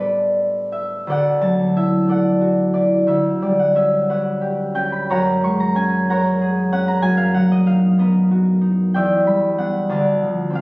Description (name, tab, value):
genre	classical, solo harp piece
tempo	61 BPM (dotted quarters)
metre	6/8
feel	uneven beats, rubato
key	unclear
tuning	A4 = 440 Hz
part	concert harp	solo	0.0-10.6 s	D2 to C#6	-15 LUFS	equal	none
room	wet recital hall reverb, RT60 1.7 s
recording	recorded on a phone in the room, studio reverb, compression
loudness	-15 LUFS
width	side -24 dB against mid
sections	0.0-1.1 A section; 1.1-10.6 B section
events	none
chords	0.0 A9sus4; 1.1 Dadd9; 3.1 Gmaj7#11/D; 5.1 F#add9; 7.0 Bmaj7#11/F#; 8.9 Em7; 9.9 Dm7